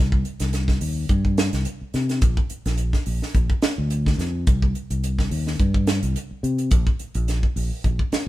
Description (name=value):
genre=afrobeat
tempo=107 BPM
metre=4/4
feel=swing 54% on 16ths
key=C minor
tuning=A4 = 440 Hz
part: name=fingered electric bass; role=bass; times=0.0-8.2 s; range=Bb1 to C3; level=-23 LUFS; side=equal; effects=none
part: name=tight funk drum kit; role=drums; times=0.1-8.3 s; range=hi-hat, kick drum, snare drum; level=-22 LUFS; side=equal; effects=none
room=light reverb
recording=band playing live in one room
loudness=-20 LUFS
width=side -16 dB against mid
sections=0.0-8.3 A section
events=none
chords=none